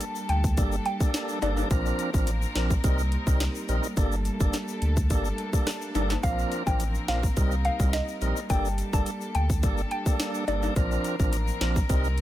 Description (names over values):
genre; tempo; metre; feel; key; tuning
dancehall; 106 BPM; 4/4; straight; G minor; A4 = 441 Hz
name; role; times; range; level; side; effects
tonewheel organ; accompaniment; 0.0-12.1 s; F3 to Bb4; -32 LUFS; right 2 dB; overdrive, fast rotary speaker
warm studio string section; sustained chords; 0.0-12.2 s; F3 to Bb4; -35 LUFS; equal; sidechain pumping
island pop drum kit; drums; 0.0-12.2 s; hi-hat, kick drum, rim click, snare drum; -26 LUFS; equal; none
tube shaker and timbales; percussion; 0.0-12.2 s; none; -38 LUFS; left 9 dB; none
hollow square pluck; melody; 0.3-1.5, 6.2-10.6 s; D5 to A5; -33 LUFS; left 1 dB; chorus, ping-pong delay
saturated sub bass; bass; 0.3-12.2 s; G1 to D2; -27 LUFS; equal; none
room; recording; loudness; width
little or no reverb; none; -24 LUFS; side -14 dB against mid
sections
0.0-12.2 A section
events
none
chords
0.0 Gmadd9; 1.7 Bbadd9; 2.8 Cm7; 4.0 Gmadd9; 6.2 Bbadd9; 7.4 Cm7; 8.5 Gmadd9; 10.8 Bbadd9